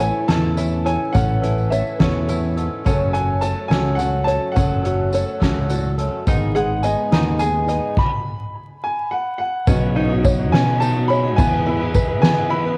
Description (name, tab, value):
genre	indie folk with a building arrangement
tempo	70 BPM (dotted quarters)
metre	6/8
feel	straight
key	unclear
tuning	A4 = 439 Hz
part	bright upright piano	melody	0.0-12.8 s	C#5 to B5	-26 LUFS	equal	cassette tape, tape echo
part	fingerpicked old ladder-braced acoustic guitar	accompaniment	0.0-7.9 s	E2 to A4	-30 LUFS	equal	cassette tape
part	picked swing-style acoustic guitar	accompaniment	0.0-12.8 s	F#2 to C#5	-30 LUFS	equal	cassette tape
part	open-back banjo	arpeggios	0.0-12.8 s	B3 to D#5	-27 LUFS	equal	cassette tape
part	fingered electric bass	bass	0.0-12.8 s	F#1 to E3	-24 LUFS	equal	none
part	soft-mallet drum kit	drums	0.0-12.6 s	crash cymbal, hi-hat, kick drum, ride cymbal, snare drum	-23 LUFS	equal	none
part	tambourine	percussion	0.0-12.1 s	none	-44 LUFS	equal	none
part	felt-muted upright piano	accompaniment	9.7-12.8 s	B1 to E5	-34 LUFS	equal	none
room	light reverb, small room ambience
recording	home recording on cassette, vinyl crackle, lossy compression artefacts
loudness	-19 LUFS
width	mono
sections	0.0-9.7 A section; 9.7-12.8 B section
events	stop 8.0-9.7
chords	0.0 A; 2.9 F#m; 6.3 G#m; 9.7 Badd9; 11.4 E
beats	0.29 | 1.15 2.00 | 2.85 3.71 | 4.56 5.42 | 6.27 7.12 | 7.97 8.83 | 9.68 10.53 | 11.38 12.23